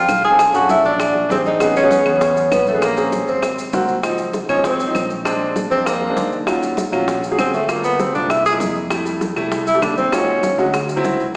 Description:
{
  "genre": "Afro-Cuban jazz",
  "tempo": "197 BPM",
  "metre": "4/4",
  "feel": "straight",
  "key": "unclear",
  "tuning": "A4 = 440 Hz",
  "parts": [
    { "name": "vibraphone with soft mallets", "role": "melody", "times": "0.0-3.9 s", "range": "A4 to Ab5", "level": "-17 LUFS", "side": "equal", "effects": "none" },
    { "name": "breathy tenor saxophone", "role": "second line", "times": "0.0-10.6 s", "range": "A3 to G#4", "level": "-18 LUFS", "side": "equal", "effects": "none" },
    { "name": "warm baby grand piano", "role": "accompaniment", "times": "0.0-11.2 s", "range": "F3 to A4", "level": "-20 LUFS", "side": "equal", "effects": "none" },
    { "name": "fingered electric bass", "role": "bass", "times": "0.0-11.4 s", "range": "G1 to F2", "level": "-29 LUFS", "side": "equal", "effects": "none" },
    { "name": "bongos", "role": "percussion", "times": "0.1-11.2 s", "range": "none", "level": "-26 LUFS", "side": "equal", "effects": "none" },
    { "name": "claves", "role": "percussion", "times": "0.1-10.9 s", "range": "none", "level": "-28 LUFS", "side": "left 1 dB", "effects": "none" },
    { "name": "congas", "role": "percussion", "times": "0.1-11.2 s", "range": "none", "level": "-30 LUFS", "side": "equal", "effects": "none" },
    { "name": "maracas", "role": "percussion", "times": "0.1-11.3 s", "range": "none", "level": "-36 LUFS", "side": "left 1 dB", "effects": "none" }
  ],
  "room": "wet recital hall reverb, RT60 1.7 s",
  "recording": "recorded in a church or concert hall, small speaker sound",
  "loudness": "-15 LUFS",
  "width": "side -29 dB against mid",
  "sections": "0.0-4.0 A section; 4.0-11.4 B section",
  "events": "tenor saxophone solo 4.0-11.4",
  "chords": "0.4 Bm7; 1.0 Bb13; 1.6 Amaj9; 2.8 Bbm7; 3.4 Ab9; 4.0 Dbmaj9; 5.3 Bb7; 6.5 Ebm9; 7.7 Gm9; 8.3 Caug7; 8.9 Fmaj9; 10.1 Ebm11; 10.7 D9",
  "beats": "0.08 | 0.39 0.69 1.00 1.30 | 1.61 1.91 2.21 2.52 | 2.82 3.13 3.43 3.73 | 4.04 4.34 4.65 4.95 | 5.26 5.56 5.86 6.17 | 6.47 6.78 7.08 7.39 | 7.69 8.00 8.30 8.60 | 8.91 9.21 9.52 9.82 | 10.13 10.43 10.74 11.04 | 11.35"
}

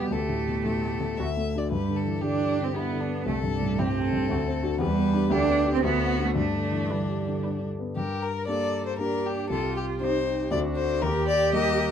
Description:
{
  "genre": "quick classical-period movement for piano quartet",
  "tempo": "116 BPM",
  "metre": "3/4",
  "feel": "straight",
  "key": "G major, G minor from 8.0 s",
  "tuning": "A4 = 440 Hz",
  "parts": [
    { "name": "clear violin", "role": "melody", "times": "0.0-11.9 s", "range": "D4 to E5", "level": "-30 LUFS", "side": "left 4 dB", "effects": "none" },
    { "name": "rich cello", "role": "second line", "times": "0.0-11.9 s", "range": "G3 to G4", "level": "-28 LUFS", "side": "right 6 dB", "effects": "none" },
    { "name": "dark concert grand piano", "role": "accompaniment", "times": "0.0-11.9 s", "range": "C2 to G4", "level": "-27 LUFS", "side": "left 2 dB", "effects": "none" },
    { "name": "warm viola", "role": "accompaniment", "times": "0.0-11.9 s", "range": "E4 to C5", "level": "-35 LUFS", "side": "right 3 dB", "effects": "none" }
  ],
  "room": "moderate studio reverb, RT60 0.7 s",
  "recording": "dark, warm production",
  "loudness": "-24 LUFS",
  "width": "side -8 dB against mid",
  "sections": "0.0-8.0 A section; 8.0-11.9 B section",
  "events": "none",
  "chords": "0.1 Dsus4; 1.2 D; 1.7 G; 3.3 C; 4.3 D7; 4.8 Em7; 5.3 G/D; 5.8 D7; 6.4 G; 8.0 Gm; 9.5 Cm; 10.5 D7; 11.0 Eb",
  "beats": "| 0.13 0.66 1.18 | 1.71 2.23 2.75 | 3.26 3.79 4.30 | 4.81 5.32 5.84 | 6.37 6.90 7.43 | 7.96 8.48 8.99 | 9.51 10.02 10.53 | 11.04 11.55"
}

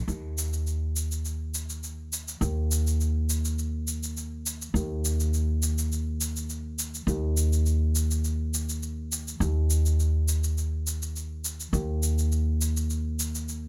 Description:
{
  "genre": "organic downtempo",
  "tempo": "103 BPM",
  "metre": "4/4",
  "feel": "straight",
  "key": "unclear",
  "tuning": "A4 = 440 Hz",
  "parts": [
    { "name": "upright bass", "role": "bass", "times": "0.1-13.7 s", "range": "Eb2", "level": "-28 LUFS", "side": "equal", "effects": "tube saturation" },
    { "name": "shaker", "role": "drums", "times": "0.1-13.6 s", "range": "none", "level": "-35 LUFS", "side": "equal", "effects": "overdrive" }
  ],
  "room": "little or no reverb",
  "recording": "none",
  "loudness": "-28 LUFS",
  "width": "mono",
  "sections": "0.1-13.7 A section",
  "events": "none",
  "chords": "none",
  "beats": "| 0.08 0.67 1.25 1.83 | 2.41 3.00 3.58 4.16 | 4.74 5.33 5.91 6.49 | 7.07 7.66 8.24 8.82 | 9.40 9.99 10.57 11.15 | 11.73 12.32 12.90 13.48"
}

